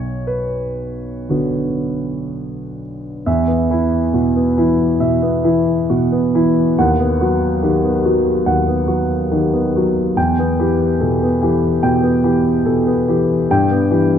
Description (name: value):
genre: classical, romantic character piece for solo piano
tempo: 70 BPM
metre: 4/4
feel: uneven beats, rubato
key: B minor, E minor from 3.3 s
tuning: A4 = 440 Hz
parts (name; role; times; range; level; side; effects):
- warm grand piano; solo; 0.0-14.2 s; B1 to G5; -14 LUFS; equal; none
room: wet scoring stage reverb, RT60 1.9 s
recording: dark, warm production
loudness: -14 LUFS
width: side -8 dB against mid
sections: 0.0-3.3 A section; 3.3-14.2 B section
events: none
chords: 0.0 Bm; 3.3 E5; 6.8 B/D#; 10.2 Em; 13.5 Em/G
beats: 0.28 1.29 2.29 | 3.27 4.13 5.00 5.88 | 6.77 7.61 8.46 9.32 | 10.17 11.00 11.82 12.65 | 13.49